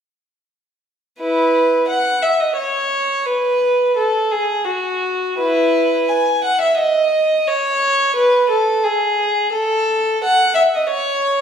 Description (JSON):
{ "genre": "classical, baroque-style suite movement for unaccompanied violin", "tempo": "87 BPM", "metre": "3/4", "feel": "rubato", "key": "E major", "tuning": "A4 = 439 Hz", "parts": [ { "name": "rich violin", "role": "solo", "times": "1.2-11.4 s", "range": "E4 to G#5", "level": "-14 LUFS", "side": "equal", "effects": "none" } ], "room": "wet stone room reverb, RT60 1.4 s", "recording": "heard from further back in the room", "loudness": "-14 LUFS", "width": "side -8 dB against mid", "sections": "1.2-11.4 A section", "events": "none", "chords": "none" }